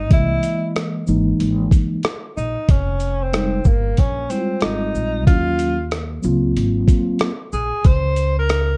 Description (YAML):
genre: hip hop, jazz-hop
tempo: 93 BPM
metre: 4/4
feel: swing 66% on 16ths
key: C phrygian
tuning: A4 = 441 Hz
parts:
  - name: breathy tenor saxophone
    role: melody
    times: 0.0-8.8 s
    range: Bb3 to C5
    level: -25 LUFS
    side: equal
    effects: plate reverb
  - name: upright bass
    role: bass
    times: 0.0-8.8 s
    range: F1 to Eb2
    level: -24 LUFS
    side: equal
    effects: none
  - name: mellow tine electric piano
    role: accompaniment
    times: 0.1-7.3 s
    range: E3 to D#5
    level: -23 LUFS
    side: equal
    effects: plate reverb
  - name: boom bap sampler-style drum kit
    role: drums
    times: 0.1-8.7 s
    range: hi-hat, kick drum, rim click, shaker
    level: -19 LUFS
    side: equal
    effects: vintage 12-bit sampler grit
room: little or no reverb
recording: dark, warm production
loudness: -19 LUFS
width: mono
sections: 0.0-8.8 A section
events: none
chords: 0.1 C7#9b13 (rootless); 2.7 Fm9; 5.3 Ebm9; 6.6 Ab13; 7.9 Db5